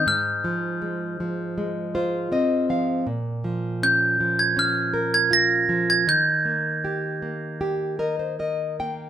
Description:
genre	children's music, lullaby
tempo	79 BPM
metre	4/4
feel	rubato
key	unclear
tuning	A4 = 439 Hz
part	nylon-string guitar	accompaniment	0.0-9.1 s	Ab2 to G5	-25 LUFS	equal	none
part	glockenspiel with hard plastic mallets	melody	0.1-8.4 s	F6 to Bb6	-20 LUFS	right 2 dB	none
room	moderate large studio reverb, RT60 0.9 s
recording	band playing live in one room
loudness	-21 LUFS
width	side -10 dB against mid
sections	0.0-9.1 A section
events	nylon-string guitar fill 1.6-3.1, 7.6-9.1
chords	0.1 Fm/Ab; 3.1 Bbm; 6.1 Eb

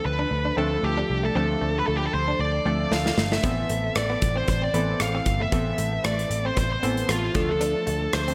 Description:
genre	1980s-style pop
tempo	115 BPM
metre	4/4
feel	swing 55% on 16ths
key	A minor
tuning	A4 = 440 Hz
part	bluesy overdriven lead guitar	melody	0.0-8.3 s	F4 to F5	-29 LUFS	equal	distortion, digital delay
part	chorused retro synth keys	accompaniment	0.0-8.3 s	E3 to A4	-32 LUFS	equal	none
part	direct-recorded clean electric guitar	riff	0.0-8.3 s	A3 to D4	-36 LUFS	equal	lush chorus
part	picked electric bass	bass	0.1-8.3 s	G1 to D2	-30 LUFS	equal	none
part	big rock drum kit	drums	2.9-8.3 s	hi-hat, kick drum, rim click, snare drum	-30 LUFS	equal	gated reverb
part	cowbell	percussion	3.4-8.3 s	none	-43 LUFS	equal	none
room	wet lush hall reverb, RT60 2.4 s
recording	bright 1980s-style digital production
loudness	-24 LUFS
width	mono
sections	0.0-8.3 A section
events	drum fill 2.9-3.4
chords	0.0 Dm; 3.4 Amadd9; 7.4 Dm

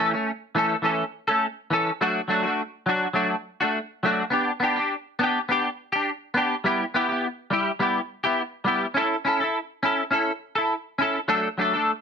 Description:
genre	highlife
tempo	104 BPM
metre	4/4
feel	swing 55% on 16ths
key	D major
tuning	A4 = 440 Hz
part	semi-hollow electric guitar	solo	0.0-11.9 s	E3 to A4	-21 LUFS	equal	ensemble chorus
room	moderate studio reverb, RT60 0.6 s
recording	none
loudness	-22 LUFS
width	side -6 dB against mid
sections	0.0-11.3 A section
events	none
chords	0.0 A; 2.0 D; 4.3 G; 6.6 Em/G; 9.0 A; 11.3 D

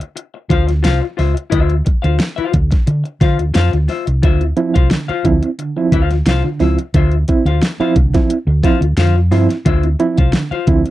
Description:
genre	funk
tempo	88 BPM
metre	4/4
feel	straight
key	D minor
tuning	A4 = 440 Hz
part	semi-hollow electric guitar	accompaniment	0.0-10.9 s	F4 to F5	-21 LUFS	left 9 dB	none
part	dubstep drum kit	drums	0.0-10.9 s	hi-hat, kick drum, snare drum	-15 LUFS	equal	overdrive
part	hollow-body short-scale fingered electric bass	bass	0.5-10.8 s	C2 to D3	-15 LUFS	equal	tube saturation
part	overdriven reed electric piano	stabs	4.2-10.9 s	D3 to E4	-17 LUFS	right 4 dB	fast tremolo
room	little or no reverb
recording	dry, close 1970s-style studio recording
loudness	-12 LUFS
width	side -15 dB against mid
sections	0.0-10.9 A section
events	none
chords	0.0 Dm9

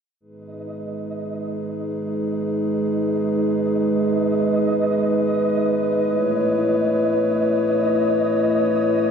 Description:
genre	drum and bass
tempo	free time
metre	none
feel	none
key	G# phrygian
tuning	A4 = 444 Hz
part	dark analog pad	sustained chords	0.2-9.1 s	G#3 to C#5	-19 LUFS	equal	chorus
part	flickering grainy texture	texture	0.6-9.1 s	D#5	-27 LUFS	right 1 dB	built-in reverb
room	wet echo chamber reverb, RT60 1.9 s, digital ambience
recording	none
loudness	-18 LUFS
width	side -7 dB against mid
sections	0.2-9.1 A section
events	none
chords	0.2 G#m; 6.1 A

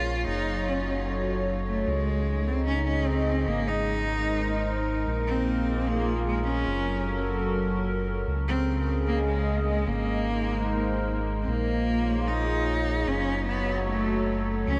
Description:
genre	IDM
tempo	150 BPM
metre	4/4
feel	swing 62% on 16ths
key	unclear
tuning	A4 = 440 Hz
part	rich cello	melody	0.0-14.8 s	Ab3 to F4	-32 LUFS	equal	analog delay
part	hollow soft pad	sustained chords	0.0-14.8 s	Db3 to Eb5	-32 LUFS	equal	chorus
part	round analog bass	bass	0.0-14.8 s	Gb1 to Db2	-32 LUFS	equal	none
room	wet huge ambient reverb, RT60 7.3 s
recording	dreamy mix soaked in reverb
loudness	-27 LUFS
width	mono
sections	0.0-11.5 A section; 11.5-14.8 B section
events	none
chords	0.3 Gbm; 1.9 Dbsus2; 3.5 Abadd9; 5.1 Bb5; 6.7 Gbm; 8.3 Dbsus2; 9.9 Abadd9; 11.5 Bbm7; 13.1 Gbm

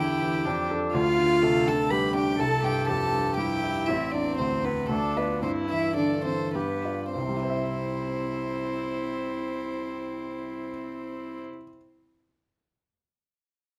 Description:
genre	quick classical-period movement for piano quartet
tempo	97-124 BPM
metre	3/4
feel	rubato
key	C major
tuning	A4 = 439 Hz
part	rich violin	melody	0.0-11.4 s	A4 to B5	-34 LUFS	equal	none
part	warm cello	second line	0.0-11.4 s	A3 to B4	-33 LUFS	equal	none
part	clear baby grand piano	accompaniment	0.0-11.8 s	A1 to E5	-32 LUFS	equal	none
part	rich viola	accompaniment	0.0-11.4 s	C4 to A4	-34 LUFS	equal	none
room	moderate stone room reverb, RT60 1.3 s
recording	close, detailed microphones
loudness	-27 LUFS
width	mono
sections	0.0-7.1 A section; 7.1-10.7 B section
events	slowing down 3.1-7.1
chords	0.5 Dm/F; 0.9 G5/D; 2.4 C; 3.9 Am; 4.9 Dm; 5.4 C69/G; 6.5 G7; 7.1 C

